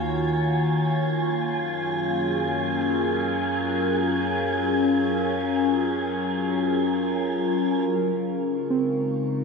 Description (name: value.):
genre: ambient.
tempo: free time.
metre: none.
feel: none.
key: unclear.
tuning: A4 = 439 Hz.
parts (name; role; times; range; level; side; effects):
evolving wavetable pad; sustained chords; 0.0-9.4 s; Db3 to Db5; -23 LUFS; left 1 dB; chorus, built-in reverb, phaser.
round analog bass; bass; 0.0-7.8 s; Eb2 to Gb2; -41 LUFS; equal; none.
wind-like tuned noise texture; texture; 0.0-9.4 s; Ab5 to Db6; -30 LUFS; right 2 dB; built-in reverb.
muted felt-like synth keys; arpeggios; 8.7-9.4 s; C4; -25 LUFS; right 4 dB; chorus.
room: wet plate reverb, RT60 3.6 s.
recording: dreamy mix soaked in reverb.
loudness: -22 LUFS.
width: side -4 dB against mid.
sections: 0.0-7.9 A section; 7.9-9.4 B section.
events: fade-out on analog synth bass 0.0-7.9; filter sweep on ambient pad 7.9-9.4.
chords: 0.0 Ebm7; 1.1 Gbmaj7; 7.9 Db6.